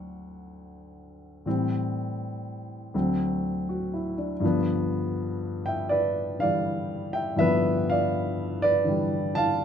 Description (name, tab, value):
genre	solo jazz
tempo	81 BPM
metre	4/4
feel	swing 67% on 8ths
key	unclear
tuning	A4 = 440 Hz
part	dark grand piano	solo	0.0-9.6 s	D2 to A5	-25 LUFS	equal	none
room	light reverb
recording	minimal, uncompressed stereo recording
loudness	-24 LUFS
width	side -8 dB against mid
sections	0.0-9.6 A section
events	none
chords	0.0 D7; 1.5 Am7; 2.9 D7; 4.4 G7